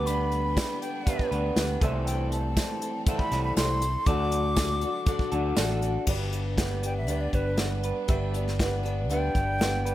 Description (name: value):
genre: folk rock and heartland rock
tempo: 120 BPM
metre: 4/4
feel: straight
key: G major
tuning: A4 = 437 Hz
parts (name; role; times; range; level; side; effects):
- wooden flute; melody; 0.0-9.9 s; B4 to D6; -32 LUFS; equal; none
- picked acoustic archtop guitar; accompaniment; 0.0-9.9 s; G2 to B4; -35 LUFS; left 4 dB; none
- warm upright piano; accompaniment; 0.0-9.9 s; G4 to F#5; -39 LUFS; right 2 dB; none
- bright studio string section; sustained chords; 0.0-9.9 s; E3 to B4; -42 LUFS; left 2 dB; none
- electric guitar through a small old amp; riff; 0.0-9.9 s; C3 to B4; -32 LUFS; right 2 dB; none
- fingered electric bass; bass; 0.0-9.9 s; G1 to D2; -29 LUFS; equal; none
- soft brush drum kit; drums; 0.1-9.9 s; crash cymbal, hi-hat, kick drum, snare drum; -28 LUFS; equal; none
- tambourine; percussion; 0.6-5.7 s; none; -39 LUFS; right 8 dB; none
room: light reverb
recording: none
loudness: -24 LUFS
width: side -14 dB against mid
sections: 0.0-6.1 A section; 6.1-9.9 B section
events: flute solo 6.1-9.9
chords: 0.0 G/D; 1.8 C6; 4.1 D; 6.1 G